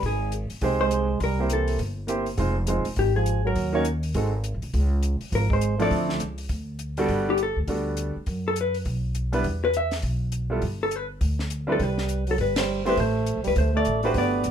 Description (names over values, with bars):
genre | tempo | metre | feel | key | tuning
jazz, small-group swing and bop | 204 BPM | 4/4 | swing 62% on 8ths | G major from 7.1 s | A4 = 439 Hz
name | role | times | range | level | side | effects
vintage hollow-body jazz guitar | melody | 0.0-14.5 s | G4 to E5 | -26 LUFS | left 3 dB | none
mellow trombone | second line | 0.0-6.2, 11.7-14.5 s | Eb3 to B3 | -28 LUFS | right 6 dB | none
upright bass | bass | 0.0-14.5 s | F1 to F#2 | -26 LUFS | equal | none
compact cocktail drum kit | drums | 0.0-14.5 s | hi-hat, kick drum, ride cymbal, snare drum | -33 LUFS | equal | none
clear grand piano | accompaniment | 0.6-14.4 s | F3 to Db5 | -26 LUFS | right 2 dB | none
room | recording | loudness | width
light reverb | none | -22 LUFS | side -9 dB against mid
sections
0.0-7.1 A section; 7.1-14.5 B section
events
band accent 12.5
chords
0.0 Abmaj7; 1.2 C7; 2.4 Fm7; 3.6 Ebm7; 4.1 Ab7b9; 4.7 Db5; 5.9 Dm9; 6.5 D6; 7.1 Gmaj9; 8.3 F#sus4; 8.9 Bmadd11; 9.4 E5; 10.6 G5; 11.8 Cmaj7(no3); 13.0 Am; 13.6 D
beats
| 0.03 0.32 0.62 0.91 | 1.21 1.50 1.79 2.09 | 2.38 2.67 2.97 3.26 | 3.56 3.85 4.14 4.44 | 4.73 5.03 5.32 5.62 | 5.91 6.21 6.50 6.80 | 7.09 7.39 7.68 7.98 | 8.27 8.57 8.86 9.15 | 9.45 9.74 10.04 10.33 | 10.62 10.92 11.21 11.51 | 11.80 12.09 12.39 12.68 | 12.97 13.27 13.56 13.85 | 14.15 14.44